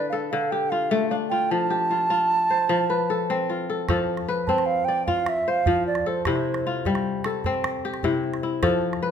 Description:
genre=west african traditional, West African string and xylophone music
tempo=101 BPM (dotted quarters)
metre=12/8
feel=straight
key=unclear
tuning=A4 = 440 Hz
part: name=wooden flute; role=melody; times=0.0-6.7 s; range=C5 to A5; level=-24 LUFS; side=right 4 dB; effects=none
part: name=kora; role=arpeggios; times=0.0-9.1 s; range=C3 to D5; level=-24 LUFS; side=left 3 dB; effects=none
part: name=calabash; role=percussion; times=3.9-9.0 s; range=none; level=-30 LUFS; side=right 3 dB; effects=none
room=moderate recital hall reverb, RT60 1.5 s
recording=minimal, uncompressed stereo recording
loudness=-21 LUFS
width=side -8 dB against mid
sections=0.0-3.9 A section; 3.9-9.1 B section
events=none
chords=0.0 Dm; 1.5 F; 6.3 C

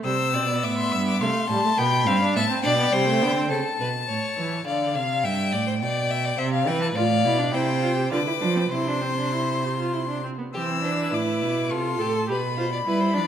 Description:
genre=classical, baroque-style fugue for string quartet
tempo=104 BPM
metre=3/4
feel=straight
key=C major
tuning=A4 = 440 Hz
part: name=bright violin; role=second line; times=0.0-13.3 s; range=G4 to A5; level=-27 LUFS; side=left 1 dB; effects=none
part: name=rich viola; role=accompaniment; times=0.0-3.5, 7.0-13.3 s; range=G3 to A4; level=-27 LUFS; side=right 2 dB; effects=none
part: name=dark cello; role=bass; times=0.0-13.3 s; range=G2 to G3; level=-26 LUFS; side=right 4 dB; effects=none
part: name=rich violin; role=melody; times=0.1-13.3 s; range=E5 to E6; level=-27 LUFS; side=left 8 dB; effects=none
room=moderate scoring stage reverb, RT60 1.7 s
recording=none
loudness=-21 LUFS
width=side -9 dB against mid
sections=0.0-3.5 A section; 3.5-10.5 B section; 10.5-13.3 A section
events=none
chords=0.0 C; 1.2 Am7; 1.8 G; 2.9 C5; 3.5 A; 4.7 Dm; 5.2 G; 6.4 C; 7.0 Dm/A; 7.5 C; 8.1 Dm6; 8.7 C; 10.5 C/E; 11.7 Am7; 12.3 G/B

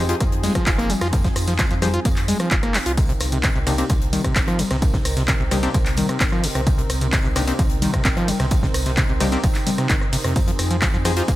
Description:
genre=acid house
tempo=130 BPM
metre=4/4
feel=straight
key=C minor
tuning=A4 = 439 Hz
part: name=warm analog pad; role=sustained chords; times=0.0-11.4 s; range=C3 to Bb4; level=-28 LUFS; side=right 2 dB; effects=lush chorus, sidechain pumping
part: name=overdriven acid bass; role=riff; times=0.0-11.3 s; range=C3 to F4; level=-25 LUFS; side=equal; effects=distortion, sidechain pumping, tape echo
part: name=band-passed chord stab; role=stabs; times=0.0-11.2 s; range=Bb3 to C5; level=-29 LUFS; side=left 4 dB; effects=chorus, tape echo
part: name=warm sub bass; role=bass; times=0.0-11.4 s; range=F1 to F2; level=-25 LUFS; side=equal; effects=sidechain pumping
part: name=huge arena drum kit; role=drums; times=0.1-11.4 s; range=hi-hat, snare drum, tambourine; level=-36 LUFS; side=left 1 dB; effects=high-pass filter on hats, high-pass filter on snare, high-pass filter on perc, high-pass filter on room
part: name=punchy analog drum machine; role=drums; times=0.1-11.4 s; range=congas, handclaps, hi-hat, ride cymbal, rim click, shaker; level=-24 LUFS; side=left 1 dB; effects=none
part: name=electronic kick drum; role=drums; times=0.2-11.4 s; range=none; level=-21 LUFS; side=equal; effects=none
room=little or no reverb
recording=none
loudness=-17 LUFS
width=side -16 dB against mid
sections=0.0-11.4 A section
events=drum fill 2.7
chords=0.0 Fm7; 3.0 Cm7; 10.4 Fm7

